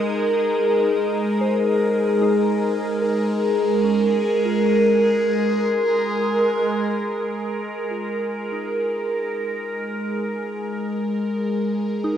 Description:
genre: ambient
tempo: free time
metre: none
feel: none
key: Ab major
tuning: A4 = 440 Hz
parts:
  - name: evolving wavetable pad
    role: sustained chords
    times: 0.0-12.2 s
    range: Ab3 to Bb4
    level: -19 LUFS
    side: equal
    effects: phaser, built-in reverb, shimmer reverb
  - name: soft synth bell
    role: arpeggios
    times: 0.0-12.2 s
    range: Db4 to Bb5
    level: -33 LUFS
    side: equal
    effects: chorus, diffuse ambient delay, shimmer reverb
  - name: organ-like drone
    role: drone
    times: 0.0-7.1 s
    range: Ab3 to Eb4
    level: -31 LUFS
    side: left 2 dB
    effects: ensemble chorus, built-in reverb
room: wet huge ambient reverb, RT60 7.8 s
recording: worn, warbling old tape, cassette tape, warbly pitch drift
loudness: -19 LUFS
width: side -9 dB against mid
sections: 0.0-7.1 A section; 7.1-12.2 B section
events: fade-out on synth bell 0.0-7.1; fade-out on synth drone 0.0-7.1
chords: 0.0 Ab69; 7.1 Absus2

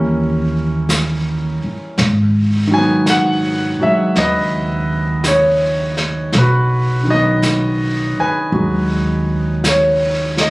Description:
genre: jazz ballad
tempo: 55 BPM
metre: 4/4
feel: swing 68% on 8ths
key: G# minor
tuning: A4 = 441 Hz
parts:
  - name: warm concert grand piano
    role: accompaniment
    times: 0.0-10.5 s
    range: D#3 to G#5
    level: -16 LUFS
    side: equal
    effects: none
  - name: upright bass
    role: bass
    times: 0.0-10.5 s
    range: G#1 to D#2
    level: -18 LUFS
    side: equal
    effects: none
  - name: vintage brush drum kit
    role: drums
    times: 0.9-10.5 s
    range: brushed snare drum, hi-hat, snare drum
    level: -22 LUFS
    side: equal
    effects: none
room: little or no reverb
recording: recorded on a phone in the room, studio reverb, compression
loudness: -13 LUFS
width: side -22 dB against mid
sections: 0.0-10.5 A section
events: none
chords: 0.0 D#7b9; 2.0 G#m7

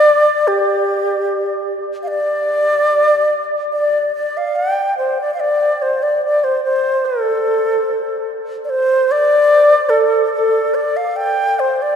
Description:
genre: chinese traditional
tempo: 73 BPM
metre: 2/4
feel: rubato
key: D yu mode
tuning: A4 = 445 Hz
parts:
  - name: bright xiao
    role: solo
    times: 0.0-12.0 s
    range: G4 to G5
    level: -13 LUFS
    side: equal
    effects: none
room: wet cathedral reverb, RT60 6.3 s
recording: recorded in a church or concert hall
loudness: -14 LUFS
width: side -8 dB against mid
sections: 0.0-5.4 A section; 5.4-12.0 B section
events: none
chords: none

